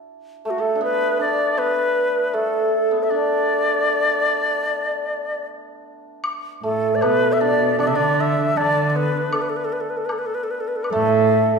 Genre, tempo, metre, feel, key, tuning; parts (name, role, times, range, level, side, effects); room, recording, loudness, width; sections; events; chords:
chinese traditional, Chinese chamber ensemble; 78 BPM; 4/4; rubato; A4 = 439 Hz
hammered dulcimer; second line; 0.0-11.6 s; A3 to E4; -22 LUFS; right 1 dB
bright reedy xiao; melody; 0.5-11.6 s; F#4 to E5; -21 LUFS; left 2 dB
woodblock; percussion; 6.2-11.0 s; -31 LUFS; left 2 dB
dark cello; second line; 6.6-11.6 s; A2 to D3; -23 LUFS; right 3 dB
wet recital hall reverb, RT60 1.6 s; minimal, uncompressed stereo recording; -18 LUFS; side -5 dB against mid
0.0-6.2 A section; 6.2-11.6 B section